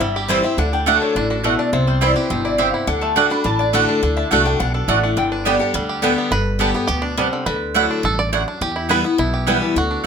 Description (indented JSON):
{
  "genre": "bluegrass",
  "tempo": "209 BPM",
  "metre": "4/4",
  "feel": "straight",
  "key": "G major",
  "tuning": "A4 = 440 Hz",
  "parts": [
    { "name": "bluegrass banjo", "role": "melody", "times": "0.0-10.1 s", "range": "D3 to D5", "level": "-24 LUFS", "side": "right 2 dB", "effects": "slapback echo" },
    { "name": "lap resonator guitar", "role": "melody", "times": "0.0-6.2 s", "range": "F#4 to B5", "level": "-23 LUFS", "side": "left 2 dB", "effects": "slapback echo" },
    { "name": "picked steel-string acoustic guitar", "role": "accompaniment", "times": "0.0-10.0 s", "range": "E2 to G4", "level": "-21 LUFS", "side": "left 3 dB", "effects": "none" },
    { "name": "upright bass", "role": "bass", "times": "0.0-10.0 s", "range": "G1 to E2", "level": "-23 LUFS", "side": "right 1 dB", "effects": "none" },
    { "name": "mandolin", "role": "stabs", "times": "0.3-10.1 s", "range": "A3 to A5", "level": "-18 LUFS", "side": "right 8 dB", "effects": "none" }
  ],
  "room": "moderate studio reverb, RT60 0.5 s",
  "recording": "close, detailed microphones",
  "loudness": "-16 LUFS",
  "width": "side -6 dB against mid",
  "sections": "0.0-6.3 A section; 6.3-10.1 A section",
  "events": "resonator guitar played with a steel bar solo 0.0-6.3; five-string banjo solo 6.3-10.1",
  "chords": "0.0 C; 0.6 D; 1.7 C; 2.9 D; 5.2 G; 6.3 Gadd9; 7.5 Dadd9; 8.6 Em"
}